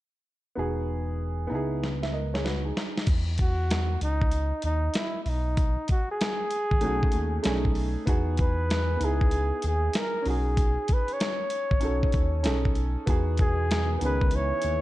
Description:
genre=hip hop, jazz-hop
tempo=96 BPM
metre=4/4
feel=swing 65% on 16ths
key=B major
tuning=A4 = 440 Hz
part: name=warm upright piano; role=accompaniment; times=0.6-3.0, 6.8-14.8 s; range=A3 to E5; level=-32 LUFS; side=right 1 dB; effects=none
part: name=smooth gliding synth bass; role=bass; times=0.6-14.8 s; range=E1 to E2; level=-28 LUFS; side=equal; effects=none
part: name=dusty soul sampler-style drum kit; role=drums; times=1.8-14.8 s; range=crash cymbal, hi-hat, kick drum, snare drum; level=-27 LUFS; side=equal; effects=vintage 12-bit sampler grit
part: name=breathy flugelhorn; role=melody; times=3.4-14.8 s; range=D#4 to C#5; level=-30 LUFS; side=equal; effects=slapback echo
part: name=growling trombone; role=second line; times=13.4-14.8 s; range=B2 to E3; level=-36 LUFS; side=left 4 dB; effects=slapback echo
room=little or no reverb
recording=dark, warm production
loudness=-24 LUFS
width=side -16 dB against mid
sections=0.6-3.1 A section; 3.1-14.8 B section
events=drum fill 1.8-3.1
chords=0.6 Emaj9; 1.5 C#m9; 2.8 N.C.; 3.1 Esus2; 4.0 C#sus2; 5.3 B6; 6.8 B7; 7.4 B13; 8.1 Emaj9; 9.0 C#m9; 10.3 B69; 11.8 B7; 12.4 B13; 13.1 Emaj9; 14.0 C#m9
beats=| 0.57 1.20 1.82 2.45 | 3.07 3.70 4.32 4.95 | 5.57 6.20 6.82 7.45 | 8.07 8.70 9.32 9.95 | 10.57 11.20 11.82 12.45 | 13.07 13.70 14.32

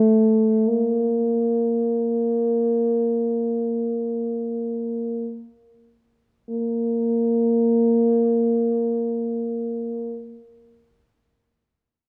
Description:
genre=classical, free, expressive piece for unaccompanied French horn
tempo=free time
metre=none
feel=none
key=unclear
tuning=A4 = 440 Hz
part: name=mellow French horn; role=solo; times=0.0-10.3 s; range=A3 to Bb3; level=-22 LUFS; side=equal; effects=none
room=wet recital hall reverb, RT60 1.6 s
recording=none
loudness=-22 LUFS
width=mono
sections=0.0-6.5 A section; 6.5-12.1 B section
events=slowing down 0.0-6.5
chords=none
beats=free time

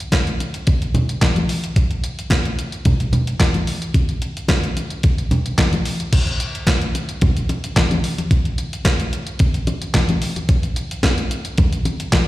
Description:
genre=funk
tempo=110 BPM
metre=4/4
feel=straight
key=none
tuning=none
part: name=crisp 8-bit digital drum machine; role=drums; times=0.0-12.3 s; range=crash cymbal, handclaps, hi-hat, kick drum, snare drum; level=-18 LUFS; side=equal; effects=none
part: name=congas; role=percussion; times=0.1-12.3 s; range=none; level=-22 LUFS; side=left 1 dB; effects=slapback echo
room=moderate club reverb, RT60 0.6 s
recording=live gig heard through the venue's PA, recital hall reverb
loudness=-17 LUFS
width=side -16 dB against mid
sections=0.0-6.1 A section; 6.1-12.3 B section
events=none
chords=none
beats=0.13 0.67 1.22 | 1.76 2.31 2.85 3.40 | 3.94 4.49 5.04 5.58 | 6.13 6.67 7.22 7.76 | 8.31 8.85 9.40 9.95 | 10.49 11.04 11.58 12.13

